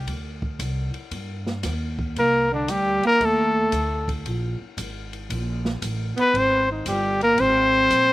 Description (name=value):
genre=jazz, small-group swing and bop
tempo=115 BPM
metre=4/4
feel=swing 67% on 8ths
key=unclear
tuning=A4 = 441 Hz
part: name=upright bass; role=bass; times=0.0-8.1 s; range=G1 to G2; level=-28 LUFS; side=equal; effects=none
part: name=open jazz drum kit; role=drums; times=0.1-8.1 s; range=hi-hat, kick drum, ride cymbal, snare drum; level=-33 LUFS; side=left 1 dB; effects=none
part: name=breathy trumpet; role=melody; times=2.2-8.1 s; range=D4 to C5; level=-19 LUFS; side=left 1 dB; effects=none
part: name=growling alto saxophone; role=second line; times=2.2-8.1 s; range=D3 to C4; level=-24 LUFS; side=right 3 dB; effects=none
room=little or no reverb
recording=recorded outdoors, with no room sound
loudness=-20 LUFS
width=side -17 dB against mid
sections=0.0-8.1 A section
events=none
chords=0.1 Csus2; 1.1 Eb; 2.2 Cmadd9; 4.3 Absus2; 5.3 Asus2; 6.3 Abmaj9